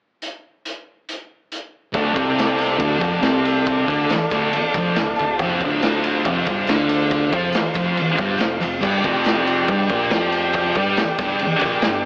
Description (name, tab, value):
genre	garage rock duo or trio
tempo	139 BPM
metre	4/4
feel	straight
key	D minor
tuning	A4 = 442 Hz
part	raw garage drum kit	drums	0.2-11.9 s	crash cymbal, hi-hat, kick drum, ride cymbal, snare drum	-22 LUFS	equal	none
part	overdriven combo organ	sustained chords	1.9-12.1 s	F4 to A5	-23 LUFS	equal	none
part	thick fuzz guitar	riff	1.9-12.0 s	D2 to G4	-20 LUFS	equal	distortion
part	fingered electric bass	bass	1.9-12.1 s	D1 to G2	-29 LUFS	equal	tube saturation
part	tambourine	percussion	2.0-11.9 s	none	-45 LUFS	left 1 dB	none
room	wet spring reverb, RT60 1.4 s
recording	AM radio sound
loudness	-16 LUFS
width	side -29 dB against mid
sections	0.2-1.9 A section; 1.9-12.1 B section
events	transistor combo organ fill 4.7-5.4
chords	0.2 N.C.; 1.9 Dm; 5.4 F5; 8.8 G5